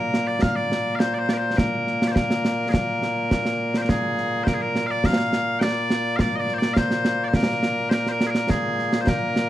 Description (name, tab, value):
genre	scottish traditional, Scottish pipe music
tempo	104 BPM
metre	4/4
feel	straight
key	Bb mixolydian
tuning	A4 = 440 Hz
part	loud bright bagpipes	melody	0.0-9.5 s	Bb2 to G5	-22 LUFS	left 1 dB	slapback echo
part	concert snare drum and concert bass drum	drums	0.1-9.5 s	none	-23 LUFS	right 1 dB	none
room	small room ambience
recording	dry, close 1970s-style studio recording, vinyl crackle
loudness	-20 LUFS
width	side -13 dB against mid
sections	0.0-3.9 A section; 3.9-9.5 A section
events	none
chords	none